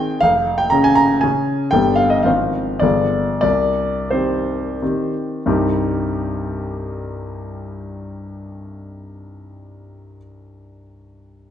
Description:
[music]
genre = classical, romantic triple-time dance for piano with dotted rhythms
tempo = 84-128 BPM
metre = 3/4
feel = rubato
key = C minor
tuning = A4 = 440 Hz
[part]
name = clear concert grand piano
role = solo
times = 0.0-11.5 s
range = F1 to Bb5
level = -17 LUFS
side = left 1 dB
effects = none
[sound]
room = moderate recital hall reverb, RT60 1.7 s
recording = nothing above 10.6 kHz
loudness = -16 LUFS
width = side -10 dB against mid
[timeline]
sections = 0.0-5.5 A section; 5.5-9.4 B section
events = slowing down 1.0-5.5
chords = 0.2 Db/F; 1.7 G; 2.3 Fm/Ab; 2.8 G7b9; 3.4 Cm

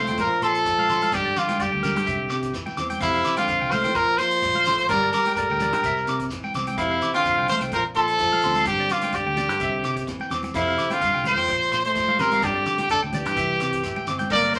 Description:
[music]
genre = highlife guitar band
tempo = 127 BPM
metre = 4/4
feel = swing 53% on 16ths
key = unclear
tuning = A4 = 439 Hz
[part]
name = brilliant trumpet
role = melody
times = 0.0-14.6 s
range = E4 to D5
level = -24 LUFS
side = equal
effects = none
[part]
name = breathy trombone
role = second line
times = 0.0-14.5 s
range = C3 to Bb3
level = -35 LUFS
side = equal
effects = none
[part]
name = picked steel-string acoustic guitar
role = accompaniment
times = 0.0-14.6 s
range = F2 to D4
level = -36 LUFS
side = equal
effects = none
[part]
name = electric guitar at the edge of break-up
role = arpeggios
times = 0.0-14.6 s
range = Bb4 to D6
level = -30 LUFS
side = equal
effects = none
[part]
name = fingered electric bass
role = bass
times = 0.0-14.5 s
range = G1 to F3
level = -35 LUFS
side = equal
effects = none
[part]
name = vintage drum kit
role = drums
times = 0.1-14.6 s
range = crash cymbal, hi-hat, kick drum, rim click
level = -41 LUFS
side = equal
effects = none
[part]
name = shekere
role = percussion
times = 0.1-14.6 s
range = none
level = -40 LUFS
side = equal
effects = none
[part]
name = congas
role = percussion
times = 0.8-14.3 s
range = none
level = -37 LUFS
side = equal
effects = none
[sound]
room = moderate studio reverb, RT60 0.6 s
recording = none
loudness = -23 LUFS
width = mono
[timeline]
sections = 0.0-14.3 A section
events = none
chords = 0.2 Bbsus2; 1.1 Gm; 2.1 C; 3.0 Fadd9; 4.0 Bbsus2; 4.9 Gm; 5.8 C; 6.8 Fadd9; 7.7 Bbsus2; 8.7 Gm; 9.6 C; 10.5 Fadd9; 11.5 Bbsus2; 12.4 Gm; 13.4 C

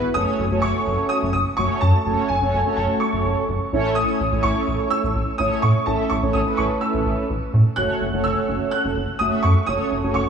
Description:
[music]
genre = synth-pop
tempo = 126 BPM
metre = 4/4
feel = straight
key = F# dorian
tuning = A4 = 440 Hz
[part]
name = mellow synth brass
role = accompaniment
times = 0.0-10.2 s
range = A3 to E5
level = -22 LUFS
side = right 1 dB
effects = chorus, shimmer reverb
[part]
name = rubbery square bass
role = bass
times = 0.0-10.3 s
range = F#1 to A2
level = -22 LUFS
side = equal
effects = none
[part]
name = warm concert grand piano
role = melody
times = 0.1-10.3 s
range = G#5 to F#6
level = -24 LUFS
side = equal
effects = ensemble chorus, shimmer reverb, diffuse ambient delay
[sound]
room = wet plate reverb, RT60 3.6 s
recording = dreamy mix soaked in reverb, small room ambience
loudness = -18 LUFS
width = side -7 dB against mid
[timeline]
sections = 0.2-10.3 A section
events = none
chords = 0.2 F#m; 3.7 A; 7.8 F#m

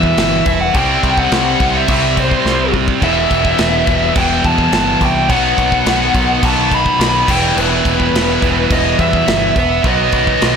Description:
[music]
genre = heavy metal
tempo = 106 BPM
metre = 4/4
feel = straight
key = E harmonic minor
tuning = A4 = 440 Hz
[part]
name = bluesy overdriven lead guitar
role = melody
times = 0.0-10.6 s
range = B4 to B5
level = -16 LUFS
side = equal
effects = distortion
[part]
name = distorted electric guitar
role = riff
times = 0.0-10.6 s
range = E2 to C4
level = -20 LUFS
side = left 11 dB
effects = overdrive
[part]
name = distorted electric guitar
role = riff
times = 0.0-10.6 s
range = B2 to E4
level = -23 LUFS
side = equal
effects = distortion
[part]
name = heavy high-gain guitar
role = riff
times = 0.0-10.6 s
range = E2 to C4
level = -18 LUFS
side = right 11 dB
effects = distortion
[part]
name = growling picked electric bass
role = bass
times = 0.0-10.6 s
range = E1 to E2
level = -20 LUFS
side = equal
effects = overdrive
[part]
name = modern studio drum kit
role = drums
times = 0.0-10.6 s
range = crash cymbal, kick drum, snare drum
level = -18 LUFS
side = equal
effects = none
[sound]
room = small room ambience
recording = blown-out, overdriven recording, overdrive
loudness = -11 LUFS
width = side -6 dB against mid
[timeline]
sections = 0.0-10.6 A section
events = drum fill 2.4-3.0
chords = 0.0 Em; 0.7 C; 3.0 Em; 5.3 B; 7.3 Em; 9.8 B

